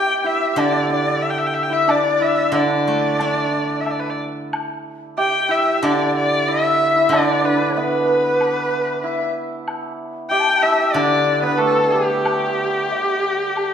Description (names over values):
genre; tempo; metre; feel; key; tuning
chinese traditional, Chinese chamber ensemble; 92 BPM; 4/4; rubato; unclear; A4 = 438 Hz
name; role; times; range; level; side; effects
clear erhu; melody; 0.0-13.7 s; G4 to G5; -20 LUFS; left 2 dB; none
hammered dulcimer; second line; 0.0-13.7 s; G3 to G4; -22 LUFS; right 4 dB; none
mellow large dizi; second line; 0.0-13.7 s; G4 to A5; -23 LUFS; left 4 dB; none
steel-string zither; accompaniment; 0.6-12.9 s; D3 to D4; -24 LUFS; right 1 dB; none
woodblock; percussion; 0.6-13.7 s; none; -29 LUFS; left 1 dB; none
room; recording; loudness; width
wet recital hall reverb, RT60 1.3 s; none; -16 LUFS; side -8 dB against mid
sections
0.0-13.7 A section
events
none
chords
none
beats
0.57 1.23 | 1.88 2.53 3.18 3.85 | 4.52 5.17 5.82 6.47 | 7.11 7.75 8.39 9.03 | 9.67 10.31 10.95 11.60 | 12.25 12.91 13.56